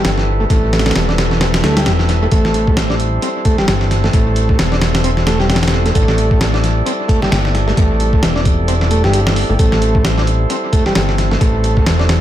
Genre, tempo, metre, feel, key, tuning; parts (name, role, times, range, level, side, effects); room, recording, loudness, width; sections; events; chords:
breakbeat, breaks; 132 BPM; 4/4; swing 58% on 16ths; A minor; A4 = 439 Hz
tonewheel organ; sustained chords; 0.0-12.2 s; G3 to D5; -21 LUFS; equal; stopped rotary speaker, sidechain pumping
overdriven combo organ; riff; 0.0-12.0 s; G3 to D4; -20 LUFS; right 1 dB; dub echo
fat analog bass; bass; 0.0-12.2 s; E1 to D2; -16 LUFS; equal
dusty soul sampler-style drum kit; drums; 0.0-12.2 s; hi-hat, kick drum, snare drum; -16 LUFS; equal; dub echo
light reverb; echo-heavy mix; -12 LUFS; side -12 dB against mid
0.0-12.2 A section
0.0 Am7